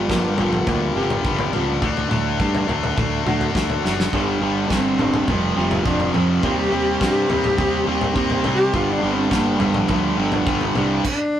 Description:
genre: quiet-loud alternative rock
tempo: 104 BPM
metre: 4/4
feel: straight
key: G minor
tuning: A4 = 445 Hz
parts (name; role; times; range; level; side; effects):
- dark cello; melody; 0.0-11.4 s; A2 to G4; -24 LUFS; equal; none
- fingerpicked steel-string acoustic guitar; arpeggios; 0.0-4.1 s; G2 to G4; -26 LUFS; right 2 dB; none
- distorted electric guitar; riff; 0.0-11.0 s; F2 to D4; -24 LUFS; left 5 dB; overdrive
- fuzz fingered electric bass; bass; 0.0-11.0 s; F1 to C3; -25 LUFS; equal; overdrive
- loose indie drum kit; drums; 0.1-11.2 s; crash cymbal, kick drum, snare drum, toms; -25 LUFS; equal; none
- overdriven semi-hollow guitar; riff; 4.1-11.0 s; F2 to C4; -22 LUFS; right 5 dB; none
room: light reverb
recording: rough rehearsal-room recording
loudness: -17 LUFS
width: side -10 dB against mid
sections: 0.0-11.4 A section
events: cello solo 0.0-11.4; drum fill 3.8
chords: 0.0 Gm7; 1.8 D; 4.1 G5; 5.3 F5; 6.4 Cm/Eb; 8.7 G5

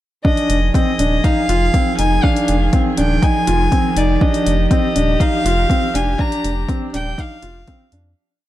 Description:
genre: piano and strings electronica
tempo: 121 BPM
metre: 4/4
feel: straight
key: F dorian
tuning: A4 = 438 Hz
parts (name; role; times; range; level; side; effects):
- rich violin; melody; 0.2-7.9 s; D5 to Bb5; -21 LUFS; equal; none
- felt-muted upright piano; riff; 0.2-8.1 s; C4 to F4; -20 LUFS; left 1 dB; none
- electronic kick drum; drums; 0.2-7.8 s; none; -17 LUFS; equal; none
- dark string quartet; sustained chords; 0.3-8.2 s; Eb3 to Ab4; -23 LUFS; right 3 dB; sidechain pumping
- electronic hi-hat; drums; 0.4-8.0 s; none; -29 LUFS; left 2 dB; none
- round analog bass; bass; 0.5-8.1 s; Eb1 to F2; -19 LUFS; equal; sidechain pumping
room: light reverb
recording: dark, warm production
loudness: -14 LUFS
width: side -14 dB against mid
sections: 0.2-8.2 drop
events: drop 0.2-8.2; fade-out 5.5-8.2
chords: 0.2 Fm7; 4.2 Ebadd9

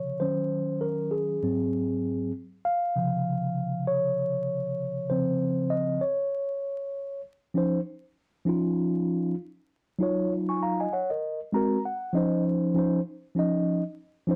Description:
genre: hip hop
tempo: 98 BPM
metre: 4/4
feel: swing 57% on 16ths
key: Db major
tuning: A4 = 440 Hz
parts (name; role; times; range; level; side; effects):
- mellow tine electric piano; solo; 0.0-14.4 s; Ab2 to Db6; -28 LUFS; equal; none
room: wet studio reverb, RT60 0.6 s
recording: dark, warm production, vinyl crackle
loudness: -28 LUFS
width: mono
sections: 0.0-7.6 A section; 7.6-14.4 B section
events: tine electric piano solo 0.0-7.6; tine electric piano fill 11.2-12.5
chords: 0.2 Ebm7; 1.4 Ab7; 2.7 Dbmaj7; 7.6 Dbadd9; 10.0 Ebm9; 11.2 Ab9; 12.5 Dbmaj9

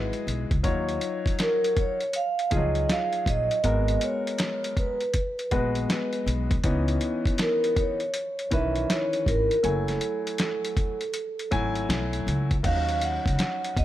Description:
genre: hip hop, jazz-hop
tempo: 80 BPM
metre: 4/4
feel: swing 66% on 16ths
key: Eb phrygian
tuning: A4 = 440 Hz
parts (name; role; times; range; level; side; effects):
- vibraphone with soft mallets; melody; 0.0-13.8 s; A4 to Gb5; -27 LUFS; right 2 dB; none
- warm upright piano; accompaniment; 0.0-13.8 s; Eb3 to Ab5; -30 LUFS; left 3 dB; none
- upright bass; bass; 0.0-13.8 s; Gb1 to Eb2; -28 LUFS; equal; none
- lo-fi sampler-style drum kit; drums; 0.1-13.8 s; crash cymbal, hi-hat, kick drum, snare drum; -28 LUFS; equal; overdrive
room: light reverb, small room ambience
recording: none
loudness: -23 LUFS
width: side -13 dB against mid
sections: 0.0-12.6 A section; 12.6-13.8 B section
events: vibraphone solo 12.6-13.8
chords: 0.0 Gb7sus2; 0.6 Ebm9; 3.6 Abm9; 6.6 Dbm9; 9.6 Gbm9; 12.6 Ebm9

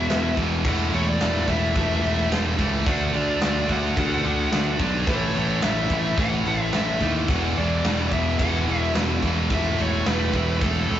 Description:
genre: hard rock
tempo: 108 BPM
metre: 4/4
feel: straight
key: unclear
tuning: A4 = 440 Hz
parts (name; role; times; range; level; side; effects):
- dark smooth lead guitar; melody; 0.0-11.0 s; A4 to F#5; -28 LUFS; left 1 dB; overdrive
- distorted electric guitar; riff; 0.0-11.0 s; E2 to D4; -30 LUFS; left 4 dB; distortion
- high-gain distorted guitar; riff; 0.0-11.0 s; E2 to D4; -27 LUFS; right 5 dB; distortion
- tight distorted guitar; riff; 0.0-11.0 s; E2 to D4; -31 LUFS; left 1 dB; distortion
- modern bright picked electric bass; bass; 0.0-11.0 s; E1 to D#2; -26 LUFS; equal; none
- big rock drum kit; drums; 0.1-11.0 s; crash cymbal, kick drum, snare drum; -26 LUFS; equal; none
room: moderate studio reverb, RT60 0.6 s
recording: rough rehearsal-room recording, warm saturation, nothing above 7.6 kHz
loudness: -20 LUFS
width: side -11 dB against mid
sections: 0.0-11.0 A section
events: none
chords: 0.0 E5; 0.7 A5/E; 2.9 D; 5.1 A; 7.3 E5; 9.5 A5/E

